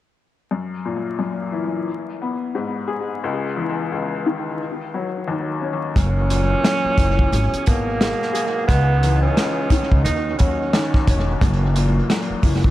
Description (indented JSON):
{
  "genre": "hip hop, boom-bap hip-hop",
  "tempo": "88 BPM",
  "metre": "4/4",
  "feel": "swing 60% on 16ths",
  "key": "unclear",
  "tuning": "A4 = 438 Hz",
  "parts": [
    { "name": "warm upright piano", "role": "accompaniment", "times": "0.5-12.7 s", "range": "C#2 to G#4", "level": "-24 LUFS", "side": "left 4 dB", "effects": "cassette tape, high-pass filter, low-pass filter, tape echo" },
    { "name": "breathy tenor saxophone", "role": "melody", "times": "6.0-11.4 s", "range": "A#3 to D#4", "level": "-23 LUFS", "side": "right 3 dB", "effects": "high-pass filter, low-pass filter, tape echo" },
    { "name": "tonewheel organ", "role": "sustained chords", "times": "6.0-12.7 s", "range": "B2 to G#4", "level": "-31 LUFS", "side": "right 4 dB", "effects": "chorus vibrato, fast rotary speaker, high-pass filter, low-pass filter" },
    { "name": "upright bass", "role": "bass", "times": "6.0-12.7 s", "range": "E1 to D#2", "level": "-20 LUFS", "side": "equal", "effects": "none" },
    { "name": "warm soul drum kit", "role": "drums", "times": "6.0-12.7 s", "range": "hi-hat, kick drum, rim click, snare drum", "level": "-19 LUFS", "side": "equal", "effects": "tape echo" },
    { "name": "sleigh bells", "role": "percussion", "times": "6.0-12.6 s", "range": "none", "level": "-38 LUFS", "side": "right 12 dB", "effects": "tape echo" }
  ],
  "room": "light reverb",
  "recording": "echo-heavy mix, vinyl crackle",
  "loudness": "-18 LUFS",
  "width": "side -14 dB against mid",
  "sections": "0.5-6.0 A section; 6.0-12.7 B section",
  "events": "none",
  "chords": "0.5 F#7; 1.9 G#m; 3.2 C#madd9; 4.6 D#m7; 6.0 F#7; 7.3 G#m7; 8.7 C#madd9; 10.1 D#m7; 11.4 F#7"
}